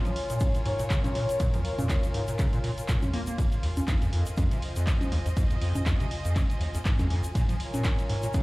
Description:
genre	acid house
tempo	121 BPM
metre	4/4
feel	swing 56% on 16ths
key	F minor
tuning	A4 = 440 Hz
part	egg shaker	percussion	0.0-8.4 s	none	-47 LUFS	left 2 dB	none
part	dark studio string section	texture	0.0-8.4 s	F4 to Ab5	-34 LUFS	left 1 dB	sidechain pumping
part	liquid acid bass	riff	0.1-8.4 s	Eb2 to Bb3	-30 LUFS	equal	tube saturation, lush chorus, digital delay
part	punchy analog drum machine	drums	0.1-8.4 s	congas, handclaps, hi-hat, ride cymbal, snare drum, toms	-34 LUFS	equal	none
part	electronic kick drum	drums	0.4-8.4 s	none	-26 LUFS	equal	none
room	light reverb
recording	played on a big sound system in a bare room, large studio reverb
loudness	-25 LUFS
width	side -21 dB against mid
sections	0.0-8.4 A section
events	none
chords	0.0 Bbm7; 3.4 Fm7; 7.4 Bbm7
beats	0.41 0.90 | 1.40 1.90 2.39 2.89 | 3.38 3.88 4.38 4.87 | 5.37 5.86 6.36 6.86 | 7.35 7.85 8.34

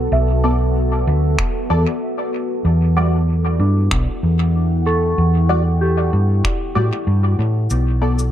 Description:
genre	ambient dub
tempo	95 BPM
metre	4/4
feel	straight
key	E dorian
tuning	A4 = 440 Hz
part	deep dark ambient pad	sustained chords	0.0-8.3 s	B3 to G5	-24 LUFS	equal	chorus, built-in reverb
part	soft synth bell	arpeggios	0.0-7.8 s	D4 to C#6	-26 LUFS	right 1 dB	chorus, low-pass filter, dub echo
part	hollow-body short-scale fingered electric bass	bass	0.0-8.3 s	B1 to A2	-16 LUFS	equal	none
part	filtered dub chord stab	stabs	0.4-8.2 s	G3 to D5	-24 LUFS	left 1 dB	phaser, ensemble chorus, cassette tape, dub echo
part	electronic kick drum	drums	1.4-6.6 s	none	-23 LUFS	equal	none
part	finger snaps and cabasa	drums	1.4-8.3 s	none	-26 LUFS	equal	dub echo
room	light reverb, small room ambience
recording	echo-heavy mix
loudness	-15 LUFS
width	side -11 dB against mid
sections	0.0-8.3 A section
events	filter sweep on synth bell 0.0-8.3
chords	0.0 Bm7; 2.7 Em9; 7.7 Bm7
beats	| 0.12 0.76 1.39 2.02 | 2.65 3.28 3.92 4.55 | 5.18 5.81 6.44 7.07 | 7.70

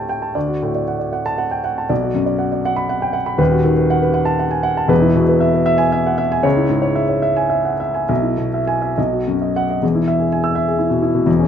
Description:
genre	classical, romantic character piece for solo piano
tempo	68-85 BPM (dotted quarters)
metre	6/8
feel	rubato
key	E major from 3.4 s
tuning	A4 = 442 Hz
part	dark grand piano	solo	0.0-11.5 s	D#1 to E6	-15 LUFS	equal	none
room	light reverb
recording	none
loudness	-15 LUFS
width	side -8 dB against mid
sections	0.0-9.8 A section; 9.8-11.5 B section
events	none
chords	0.3 D; 1.9 Bm; 3.4 B7/D#; 4.9 E; 6.4 C#m; 8.1 E/B; 9.0 B; 9.8 E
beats	| 0.35 1.13 | 1.90 2.65 | 3.40 4.15 | 4.90 5.67 | 6.45 7.24 | 8.09 8.97 | 9.82 10.56 | 11.27

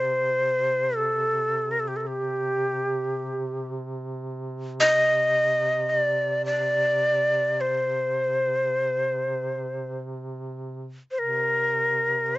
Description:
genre	caucasian folk, Caucasian lament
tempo	47-55 BPM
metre	3/4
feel	rubato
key	C dorian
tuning	A4 = 440 Hz
part	breathy bright shakuhachi	melody	0.0-12.4 s	G4 to Eb5	-22 LUFS	equal	none
part	mellow duduk	drone	0.0-12.4 s	C3	-33 LUFS	right 2 dB	stereo widening
room	little or no reverb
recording	recorded outdoors, with no room sound, nothing above 7.8 kHz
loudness	-22 LUFS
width	side -19 dB against mid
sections	0.0-11.2 A section; 11.2-12.4 B section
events	none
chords	none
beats	| 0.95 2.05 3.15 | 4.25 5.34 6.45 | 7.60 8.76 9.97 | 11.19 12.37

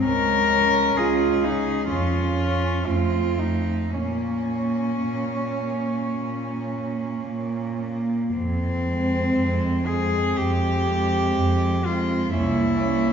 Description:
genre	classical, lyrical piece for cello ensemble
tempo	53-65 BPM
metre	4/4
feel	rubato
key	Bb minor, F minor from 8.4 s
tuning	A4 = 440 Hz
part	clear cello	melody	0.0-13.1 s	C4 to Bb4	-25 LUFS	left 4 dB	none
part	dark cello	second line	0.0-13.1 s	C4 to F4	-28 LUFS	right 4 dB	none
part	warm cello	accompaniment	0.0-13.1 s	Ab3 to Db4	-28 LUFS	right 1 dB	none
part	warm cello	bass	0.0-13.1 s	C2 to Bb2	-26 LUFS	right 1 dB	none
room	wet recital hall reverb, RT60 1.5 s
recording	recorded in a church or concert hall, nothing above 7.7 kHz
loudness	-21 LUFS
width	side -7 dB against mid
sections	0.0-8.4 A section; 8.4-13.1 B section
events	none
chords	0.1 Db5; 1.9 Db/F; 2.9 F7; 3.9 Bbm; 8.4 Fm; 12.3 C7b9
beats	| 0.05 0.97 1.91 2.89 | 3.92 5.03 6.14 7.26 | 8.36 9.37 10.38 11.37 | 12.33

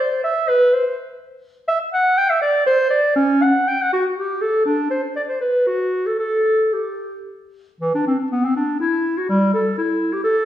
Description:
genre	classical, baroque-style fantasia for unaccompanied clarinet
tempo	108-128 BPM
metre	3/4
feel	rubato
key	G major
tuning	A4 = 440 Hz
part	mellow clarinet	solo	0.0-10.5 s	E3 to G5	-16 LUFS	equal	none
room	wet stone room reverb, RT60 1.3 s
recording	heard from further back in the room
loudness	-16 LUFS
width	side -12 dB against mid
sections	0.0-7.8 A section; 7.8-10.5 A section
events	none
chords	none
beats	| 0.24 0.73 1.21 | 1.69 2.17 2.66 | 3.17 3.67 4.16 | 4.66 5.15 5.66 | 6.18 6.71 7.24 | 7.79 8.31 8.80 | 9.29 9.77 10.24

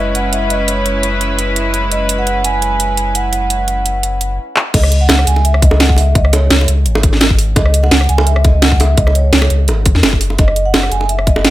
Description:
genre	liquid drum and bass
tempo	170 BPM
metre	4/4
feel	straight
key	C# minor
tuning	A4 = 439 Hz
part	vibraphone with soft mallets	melody	0.0-11.5 s	C#5 to G#5	-19 LUFS	right 2 dB	tape echo
part	warm studio string section	sustained chords	0.0-4.3 s	G#3 to B4	-18 LUFS	equal	none
part	warm sub bass	bass	0.0-11.5 s	F#1 to E2	-14 LUFS	equal	none
part	drum and bass drum kit	drums	0.1-11.5 s	crash cymbal, handclaps, hi-hat, rim click, snare drum	-15 LUFS	right 1 dB	overdrive
part	electronic kick drum	drums	4.7-11.3 s	none	-13 LUFS	equal	overdrive
part	bongos	percussion	4.7-11.4 s	none	-21 LUFS	right 1 dB	none
room	studio ambience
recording	none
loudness	-10 LUFS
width	side -15 dB against mid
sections	0.0-4.7 A section; 4.7-11.5 B section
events	drum fill 4.6; drop 4.7-11.5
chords	0.0 F#9sus4; 4.7 C#5; 10.2 F#5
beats	0.15 | 0.51 0.86 1.21 1.56 | 1.92 2.27 2.62 2.98 | 3.33 3.68 4.03 4.39 | 4.74 5.09 5.45 5.80 | 6.15 6.50 6.86 7.21 | 7.56 7.92 8.27 8.62 | 8.98 9.33 9.68 10.03 | 10.39 10.74 11.09 11.45

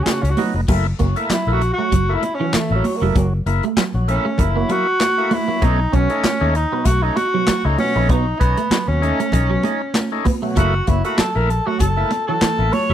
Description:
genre	funk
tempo	97 BPM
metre	4/4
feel	swing 56% on 16ths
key	unclear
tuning	A4 = 440 Hz
part	breathy tenor saxophone	melody	0.0-12.9 s	F#3 to C#5	-21 LUFS	equal	slapback echo
part	overdriven tonewheel organ	stabs	0.0-12.9 s	B2 to E4	-24 LUFS	equal	slow rotary speaker
part	vintage muted fingered electric bass	bass	0.0-12.9 s	E#1 to D#2	-19 LUFS	left 1 dB	none
part	swinging big-band drum kit	drums	0.1-12.9 s	crash cymbal, handclaps, hi-hat, kick drum, snare drum	-21 LUFS	left 1 dB	none
part	congas	percussion	0.1-12.9 s	none	-24 LUFS	right 3 dB	none
part	clean electric guitar	riff	0.4-12.9 s	E3 to C#4	-24 LUFS	right 5 dB	ensemble chorus
room	small room ambience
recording	dry, close 1970s-style studio recording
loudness	-16 LUFS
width	side -10 dB against mid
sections	0.7-12.9 A section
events	tenor saxophone solo 0.7-12.9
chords	0.0 C#9sus4; 0.7 F#7#9; 5.6 B9; 10.6 F#7#9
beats	0.07 | 0.69 1.31 1.92 2.54 | 3.16 3.77 4.39 5.01 | 5.63 6.24 6.86 7.48 | 8.10 8.71 9.33 9.95 | 10.57 11.18 11.80 12.42

